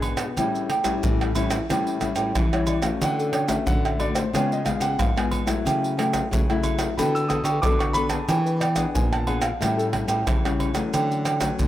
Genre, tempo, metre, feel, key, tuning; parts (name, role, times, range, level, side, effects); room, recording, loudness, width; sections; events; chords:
samba and choro; 91 BPM; 4/4; straight; A4 = 440 Hz
warm concert grand piano; melody; 0.0-9.9 s; A4 to E6; -29 LUFS; left 1 dB
nylon-string guitar; accompaniment; 0.0-11.7 s; G#2 to A4; -27 LUFS; left 4 dB
nylon-string guitar; bass; 0.0-11.7 s; G#2 to E3; -28 LUFS; equal
agogo bells, pandeiro, maracas, surdo and tamborim; percussion; 0.0-11.7 s; -24 LUFS; right 1 dB
light reverb, small room reverb; rough home demo mix; -21 LUFS; side -13 dB against mid
0.0-11.7 A section
grand piano solo 0.0-11.7
0.4 A7; 3.0 Dmaj7; 4.3 C#7; 5.7 F#m7/C#; 7.0 Bm7/D; 8.3 E7; 9.6 A7; 10.9 Dmaj7